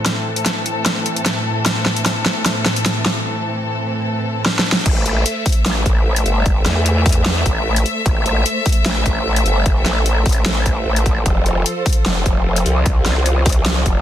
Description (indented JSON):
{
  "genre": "heavy wobble dubstep",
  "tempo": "150 BPM",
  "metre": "4/4",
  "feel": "swing 53% on 16ths, half-time",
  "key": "A minor",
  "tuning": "A4 = 443 Hz",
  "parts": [
    { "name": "warm studio string section", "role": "sustained chords", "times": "0.0-14.0 s", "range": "A2 to E5", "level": "-21 LUFS", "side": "left 1 dB", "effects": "sidechain pumping, low-pass filter" },
    { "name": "dubstep drum kit", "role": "drums", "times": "0.1-13.9 s", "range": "crash cymbal, hi-hat, snare drum", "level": "-20 LUFS", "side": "equal", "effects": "none" },
    { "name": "growl bass", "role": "bass", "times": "4.9-14.0 s", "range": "F1 to E2", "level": "-17 LUFS", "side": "equal", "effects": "chorus, overdrive" },
    { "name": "electronic kick drum", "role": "drums", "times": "4.9-13.9 s", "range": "none", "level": "-17 LUFS", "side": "equal", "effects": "overdrive" }
  ],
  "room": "light reverb",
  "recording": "dense, heavily limited modern master",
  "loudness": "-14 LUFS",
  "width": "side -11 dB against mid",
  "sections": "0.0-4.9 A section; 4.9-14.0 B section",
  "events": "build-up 0.0-4.9; drum fill 0.0-3.3, 4.5-4.9; break 3.3-4.9; drop 4.9-14.0",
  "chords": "0.0 Am; 11.3 F"
}